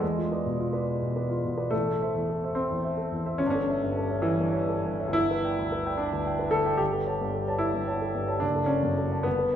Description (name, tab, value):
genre	classical, romantic character piece for solo piano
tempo	63-74 BPM (dotted quarters)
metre	6/8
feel	rubato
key	D major from 5.1 s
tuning	A4 = 440 Hz
part	clear grand piano	solo	0.0-9.6 s	F#1 to A5	-25 LUFS	equal	none
room	wet recital hall reverb, RT60 1.4 s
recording	recorded in a church or concert hall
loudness	-25 LUFS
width	side -9 dB against mid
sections	0.0-9.6 A section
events	none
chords	0.0 E7b9; 1.7 Am; 3.4 A7/G; 5.1 G; 6.8 A7/G; 8.4 D/F#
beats	| 0.01 0.87 | 1.72 2.56 | 3.40 4.23 | 5.15 5.99 | 6.80 7.61 | 8.43 9.26